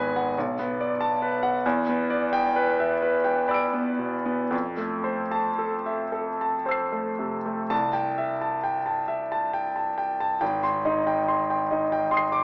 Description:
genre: classical, impressionist solo piano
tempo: 36-48 BPM (dotted quarters)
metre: 6/8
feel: rubato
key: C major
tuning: A4 = 440 Hz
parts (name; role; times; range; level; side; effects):
- bright concert grand piano; solo; 0.0-12.4 s; Ab1 to D7; -23 LUFS; equal; none
room: moderate recital hall reverb, RT60 1.9 s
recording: small speaker sound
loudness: -23 LUFS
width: side -32 dB against mid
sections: 0.0-7.7 A section; 7.7-12.4 B section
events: none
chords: 0.4 Bm7; 1.6 Em7; 4.5 Fmaj7; 7.7 C6; 10.4 Abmaj7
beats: 0.35 | 1.64 3.01 | 4.52 6.13 | 7.71 9.08 | 10.41 11.69

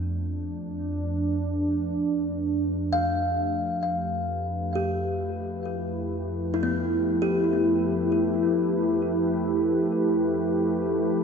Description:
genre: ambient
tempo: free time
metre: none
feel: none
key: F lydian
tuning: A4 = 440 Hz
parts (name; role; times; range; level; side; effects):
- warm analog pad; sustained chords; 0.0-11.2 s; F2 to B4; -24 LUFS; equal; lush chorus
- kalimba; arpeggios; 2.9-10.0 s; B3 to F5; -29 LUFS; left 2 dB; ping-pong delay
room: wet cathedral reverb, RT60 5.8 s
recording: in a vast, echoing space, nothing above 7.8 kHz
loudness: -23 LUFS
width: side -6 dB against mid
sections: 0.0-11.2 A section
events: filter sweep on analog synth pad 0.0-11.2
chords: 0.0 Fmaj9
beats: free time

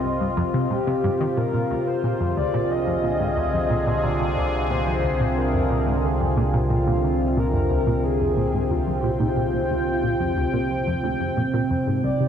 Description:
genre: ambient, sequencer-driven space music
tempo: 90 BPM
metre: 4/4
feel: straight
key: unclear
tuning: A4 = 440 Hz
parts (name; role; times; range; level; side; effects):
- breathy flute-like synth lead; melody; 0.0-12.3 s; Eb4 to Eb5; -27 LUFS; left 2 dB; lush chorus, tape echo
- sweeping resonant pad; sustained chords; 0.0-12.3 s; C3 to G5; -24 LUFS; equal; chorus, phaser
- round analog bass; bass; 0.0-12.3 s; C2; -28 LUFS; equal; none
- tight sequenced synth; riff; 0.2-12.3 s; C2 to Eb3; -26 LUFS; right 1 dB; chorus, tape echo
- bubbling stepped-filter texture; texture; 12.2-12.3 s; Eb4 to C5; -38 LUFS; right 3 dB; none
room: wet cathedral reverb, RT60 5.5 s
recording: in a vast, echoing space, cassette tape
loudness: -20 LUFS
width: side -8 dB against mid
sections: 0.0-12.0 A section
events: none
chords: 0.0 Cm7; 1.4 Bb7/C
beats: 0.04 0.70 | 1.37 2.04 2.71 3.37 | 4.04 4.71 5.37 6.04 | 6.71 7.37 8.04 8.71 | 9.37 10.04 10.71 11.37 | 12.04

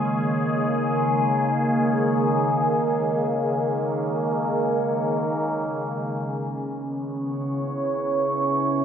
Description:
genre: ambient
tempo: free time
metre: none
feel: none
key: C# dorian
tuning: A4 = 440 Hz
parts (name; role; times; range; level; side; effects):
- evolving wavetable pad; sustained chords; 0.0-8.8 s; C#3 to C#5; -22 LUFS; equal; phaser, built-in reverb
- organ-like drone; drone; 0.0-6.1 s; C#3 to G#3; -31 LUFS; left 1 dB; ensemble chorus, built-in reverb
room: wet concert hall reverb, RT60 2.2 s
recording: none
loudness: -21 LUFS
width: side -8 dB against mid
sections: 0.0-6.0 A section; 6.0-8.8 B section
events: none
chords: 0.0 D#7(no3); 6.0 C#m7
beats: free time

